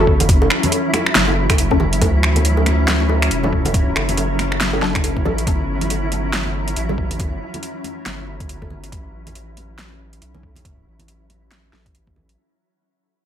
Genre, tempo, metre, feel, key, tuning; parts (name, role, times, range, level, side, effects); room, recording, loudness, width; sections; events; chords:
deep dubstep; 139 BPM; 4/4; swing 60% on 16ths, half-time; A4 = 440 Hz
granular cloud pad; sustained chords; 0.0-12.4 s; F#3 to C#4; -25 LUFS; left 1 dB; built-in reverb
filtered dub chord stab; stabs; 0.0-12.3 s; E3 to A4; -24 LUFS; left 2 dB; phaser, lush chorus, dub echo
saturated sub bass; bass; 0.0-12.4 s; E1 to D2; -21 LUFS; equal
flickering grainy texture; texture; 0.0-12.4 s; E3 to E4; -26 LUFS; equal; built-in reverb
electronic kick drum; drums; 0.1-12.1 s; -19 LUFS; equal
deep house drum kit; drums; 0.2-12.4 s; finger snaps, hi-hat, snare drum; -20 LUFS; equal
congas and bongos; percussion; 0.2-12.3 s; -25 LUFS; right 2 dB; dub echo
light reverb; -15 LUFS; side -9 dB against mid
0.0-12.4 A section
fade-out 0.0-12.4
0.0 F#m; 2.0 D; 5.5 Gsus2; 8.9 A